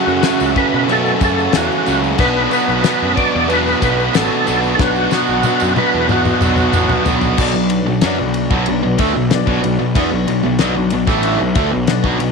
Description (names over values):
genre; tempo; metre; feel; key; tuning
classic rock; 93 BPM; 4/4; straight; B minor; A4 = 439 Hz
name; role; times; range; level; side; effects
overdriven tonewheel organ; melody; 0.0-7.0 s; F#4 to D5; -18 LUFS; right 1 dB; slow rotary speaker, chorus vibrato
bright grand piano; accompaniment; 0.0-12.3 s; C#4 to E5; -25 LUFS; left 11 dB; none
string machine, cellos; sustained chords; 0.0-12.3 s; F#3 to B4; -28 LUFS; equal; none
distorted electric guitar; riff; 0.0-12.3 s; F#2 to F#4; -20 LUFS; left 11 dB; overdrive
overdriven semi-hollow guitar; riff; 0.0-12.3 s; F#2 to C#4; -19 LUFS; right 14 dB; none
fuzz picked electric bass; bass; 0.1-12.3 s; A1 to B2; -21 LUFS; right 1 dB; overdrive
tambourine; percussion; 0.1-7.3 s; none; -36 LUFS; right 18 dB; none
damped 70s drum kit; drums; 0.2-12.3 s; crash cymbal, kick drum, ride cymbal, snare drum, toms; -20 LUFS; left 3 dB; none
room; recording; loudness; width
light reverb, small room ambience; 1960s-style stereo with parts hard left and right; -13 LUFS; side -4 dB against mid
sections
0.0-7.4 A section; 7.4-12.3 B section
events
drum fill 4.8-7.4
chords
0.0 F#m; 2.2 Bm